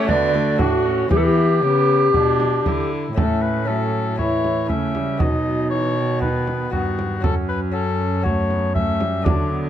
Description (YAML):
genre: classical, renaissance-style consort dance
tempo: 118 BPM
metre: 4/4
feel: straight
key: unclear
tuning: A4 = 440 Hz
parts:
  - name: warm oboe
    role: melody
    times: 0.0-9.6 s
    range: F#4 to E5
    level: -26 LUFS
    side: left 5 dB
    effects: none
  - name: bass recorder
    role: second line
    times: 0.0-9.7 s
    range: A3 to D5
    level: -22 LUFS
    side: equal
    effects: none
  - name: lute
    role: accompaniment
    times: 0.0-9.7 s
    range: F#2 to F#4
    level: -28 LUFS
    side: left 6 dB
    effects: none
  - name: warm viola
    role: accompaniment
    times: 0.0-9.7 s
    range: D#3 to E4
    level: -28 LUFS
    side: left 2 dB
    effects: none
  - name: warm cello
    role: bass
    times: 0.0-9.7 s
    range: F#2 to A3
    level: -23 LUFS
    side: right 2 dB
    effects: none
  - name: frame drum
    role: percussion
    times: 0.1-9.5 s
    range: none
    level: -24 LUFS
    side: right 2 dB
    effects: none
room: light reverb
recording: close, detailed microphones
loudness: -17 LUFS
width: side -10 dB against mid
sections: 0.0-3.2 A section; 3.2-9.7 B section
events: none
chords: 0.1 D; 1.1 Em; 3.2 A; 5.2 B; 7.2 F#m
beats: 0.09 0.59 | 1.11 1.62 2.14 2.65 | 3.17 3.68 4.19 4.69 | 5.20 5.71 6.22 6.73 | 7.24 7.74 8.25 8.75 | 9.26